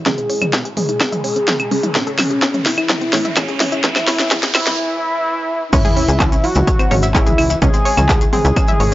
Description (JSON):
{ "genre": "melodic techno", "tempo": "127 BPM", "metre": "4/4", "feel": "straight", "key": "C# harmonic minor", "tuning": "A4 = 439 Hz", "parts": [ { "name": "fat analog lead", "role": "melody", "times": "0.0-8.9 s", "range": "C#4 to G#4", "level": "-19 LUFS", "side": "equal", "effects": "chorus, sidechain pumping, analog delay" }, { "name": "analog pluck", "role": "arpeggios", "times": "0.0-8.9 s", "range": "B#3 to E5", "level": "-24 LUFS", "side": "equal", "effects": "chorus, sidechain pumping, tape echo" }, { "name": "filtered dub chord stab", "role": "stabs", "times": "0.0-7.7 s", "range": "A2 to C#4", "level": "-26 LUFS", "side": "right 2 dB", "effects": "phaser, sidechain pumping, tape echo" }, { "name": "riser and sub drop", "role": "sound effects", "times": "0.0-7.6 s", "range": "none", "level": "-27 LUFS", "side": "equal", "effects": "none" }, { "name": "electronic kick drum", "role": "drums", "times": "0.1-8.7 s", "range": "none", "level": "-17 LUFS", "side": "equal", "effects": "high-pass filter on kick, high-pass filter on room" }, { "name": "techno drum kit", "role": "drums", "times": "0.1-8.9 s", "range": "claves, crash cymbal, handclaps, hi-hat, snare drum, toms", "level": "-19 LUFS", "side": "equal", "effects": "none" }, { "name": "tight sequencer bass", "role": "bass", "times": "5.7-8.9 s", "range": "G#1 to C#2", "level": "-16 LUFS", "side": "equal", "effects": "sidechain pumping" }, { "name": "maracas", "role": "percussion", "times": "5.7-8.9 s", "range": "none", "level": "-31 LUFS", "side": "left 2 dB", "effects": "none" } ], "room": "light reverb, digital ambience", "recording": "dry, gritty hardware recording, transformer saturation, high-pass filter, nothing above 7.5 kHz", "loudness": "-13 LUFS", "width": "side -15 dB against mid", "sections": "0.0-5.7 A section; 5.7-8.9 B section", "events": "build-up 0.0-5.7; drum fill 0.0-4.8; riser 0.0-4.8; filter sweep on synth arpeggio sound 0.0-5.7; filter sweep on analog synth lead 0.0-5.7; filter sweep on synth stab 0.0-5.7; break 4.8-5.7; drop 5.7-8.9; impact 5.7-7.6", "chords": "0.0 C#m; 1.9 A; 5.7 C#m", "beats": "| 0.06 0.53 1.00 1.48 | 1.95 2.42 2.90 3.37 | 3.84 4.31 4.79 5.26 | 5.73 6.20 6.67 7.15 | 7.62 8.09 8.56" }